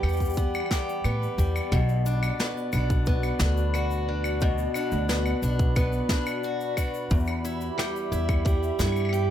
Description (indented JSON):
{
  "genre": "folktronica",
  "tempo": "89 BPM",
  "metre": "4/4",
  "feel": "straight",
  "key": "unclear",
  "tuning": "A4 = 440 Hz",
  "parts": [
    { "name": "warbly tape-like pad", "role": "sustained chords", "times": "0.0-9.3 s", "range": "F#4 to B5", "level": "-32 LUFS", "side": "right 1 dB", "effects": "chorus, built-in reverb, phaser, vintage 12-bit sampler grit" },
    { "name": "picked acoustic archtop guitar", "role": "arpeggios", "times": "0.0-9.3 s", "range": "E2 to G4", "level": "-30 LUFS", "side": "left 1 dB", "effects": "digital delay" },
    { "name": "upright bass", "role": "bass", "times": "0.0-9.3 s", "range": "B1 to A2", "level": "-26 LUFS", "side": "equal", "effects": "none" },
    { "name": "claves, cabasa and snare drum", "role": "drums", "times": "0.0-9.3 s", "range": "none", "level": "-33 LUFS", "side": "left 1 dB", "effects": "none" },
    { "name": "electronic kick drum", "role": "drums", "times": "0.2-8.9 s", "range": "none", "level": "-25 LUFS", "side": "equal", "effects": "none" }
  ],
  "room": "light reverb",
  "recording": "none",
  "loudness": "-23 LUFS",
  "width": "side -10 dB against mid",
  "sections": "0.0-1.7 A section; 1.7-9.3 B section",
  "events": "none",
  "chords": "0.0 Em; 1.7 Bm; 7.1 Em"
}